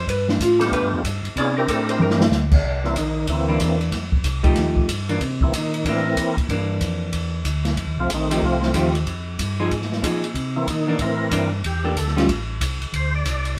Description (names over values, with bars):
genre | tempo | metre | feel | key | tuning
soul jazz organ trio | 187 BPM | 4/4 | swing 64% on 8ths | C mixolydian | A4 = 440 Hz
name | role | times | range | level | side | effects
vintage hollow-body jazz guitar | accompaniment | 0.0-12.3 s | E3 to D5 | -25 LUFS | equal | none
mellow tonewheel organ | bass | 0.0-13.6 s | A1 to C3 | -27 LUFS | equal | overdrive, chorus vibrato, slow rotary speaker
open jazz drum kit | drums | 0.1-13.5 s | crash cymbal, hi-hat, kick drum, ride cymbal, snare drum, toms | -26 LUFS | equal | none
percussive tonewheel organ | melody | 0.6-13.5 s | Eb3 to D5 | -26 LUFS | equal | slow rotary speaker, overdrive, chorus vibrato
room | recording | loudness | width
moderate studio reverb, RT60 0.6 s | band playing live in one room | -21 LUFS | mono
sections
0.0-2.6 A section; 2.6-13.6 A section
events
hollow-body jazz guitar solo 0.0-2.6; drum fill 2.0-2.3; tonewheel organ solo 2.6-13.6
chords
0.1 G9; 1.4 C9; 3.9 F9; 5.2 C9; 7.8 F9; 9.1 Fm7; 10.4 C9; 11.6 Em7b5; 12.3 Am; 12.9 D7(no3)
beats
| 0.07 0.39 0.71 1.03 | 1.35 1.68 2.00 2.32 | 2.64 2.96 3.28 3.60 | 3.92 4.24 4.56 4.88 | 5.21 5.53 5.85 6.17 | 6.49 6.81 7.13 7.46 | 7.78 8.10 8.42 8.74 | 9.06 9.39 9.71 10.03 | 10.35 10.67 11.00 11.32 | 11.64 11.96 12.28 12.60 | 12.93 13.25